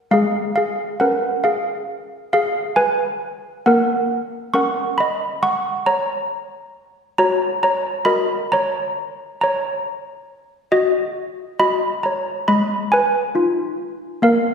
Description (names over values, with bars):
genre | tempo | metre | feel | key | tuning
classical, tune for handbells | 68 BPM | 4/4 | straight | F# major | A4 = 440 Hz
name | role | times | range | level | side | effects
malleted handbells | solo | 0.0-14.5 s | G#3 to C#6 | -17 LUFS | equal | none
room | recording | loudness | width
wet scoring stage reverb, RT60 1.8 s | recorded in a church or concert hall | -17 LUFS | side -6 dB against mid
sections
0.0-14.5 A section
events
none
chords
0.1 C#7/G#; 3.7 F#/A#; 7.2 F#; 12.5 Fm7b5/Ab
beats
| 0.10 0.99 1.88 2.77 | 3.66 4.54 5.42 6.31 | 7.20 8.08 8.96 9.83 | 10.71 11.58 12.46 13.33 | 14.21